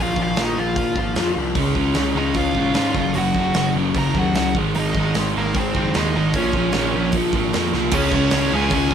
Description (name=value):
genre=punk rock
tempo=151 BPM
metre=4/4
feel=straight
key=Db major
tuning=A4 = 440 Hz
part: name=nasal lead guitar with a parked wah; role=melody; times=0.0-8.9 s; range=Bb3 to Bb5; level=-25 LUFS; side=equal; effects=overdrive
part: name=raw garage guitar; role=riff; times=0.0-8.9 s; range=Gb2 to Db4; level=-22 LUFS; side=left 4 dB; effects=overdrive
part: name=fuzz picked electric bass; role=bass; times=0.0-8.9 s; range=Gb1 to Ab2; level=-26 LUFS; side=right 1 dB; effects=overdrive
part: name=big rock drum kit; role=drums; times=0.2-8.9 s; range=crash cymbal, hi-hat, kick drum, snare drum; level=-25 LUFS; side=right 1 dB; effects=none
part: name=crunchy overdriven guitar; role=riff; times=1.6-8.9 s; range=Gb2 to Db4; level=-24 LUFS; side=right 9 dB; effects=none
part: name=heavy high-gain guitar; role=riff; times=7.9-8.9 s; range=Db3 to Db4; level=-26 LUFS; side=right 3 dB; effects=distortion
room=moderate studio reverb, RT60 0.6 s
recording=band playing live in one room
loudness=-17 LUFS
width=side -8 dB against mid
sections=0.0-7.9 A section; 7.9-8.9 B section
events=drum fill 7.7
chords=0.0 Bb5; 1.6 Db; 3.0 Gb; 4.6 Ab; 6.3 Bbm; 7.9 Db5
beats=0.37 0.77 1.17 | 1.57 1.97 2.37 2.77 | 3.16 3.56 3.96 4.36 | 4.76 5.16 5.55 5.95 | 6.35 6.75 7.14 7.54 | 7.93 8.33 8.73